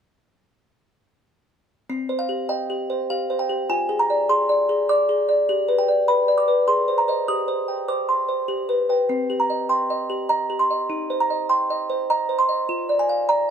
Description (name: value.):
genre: classical, lullaby for music box.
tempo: 100 BPM.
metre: 3/4.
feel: straight.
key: C minor.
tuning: A4 = 440 Hz.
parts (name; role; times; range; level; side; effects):
music box; solo; 1.9-13.5 s; C4 to Eb6; -19 LUFS; equal; none.
room: light reverb.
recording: none.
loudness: -19 LUFS.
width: side -8 dB against mid.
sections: 1.9-13.5 A section.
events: none.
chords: 1.9 Cm; 3.7 Ddim/F; 5.5 G; 6.7 Ab; 7.3 Gsus4; 8.5 G; 9.1 Cm; 10.9 Cm/Eb; 12.7 Fm6.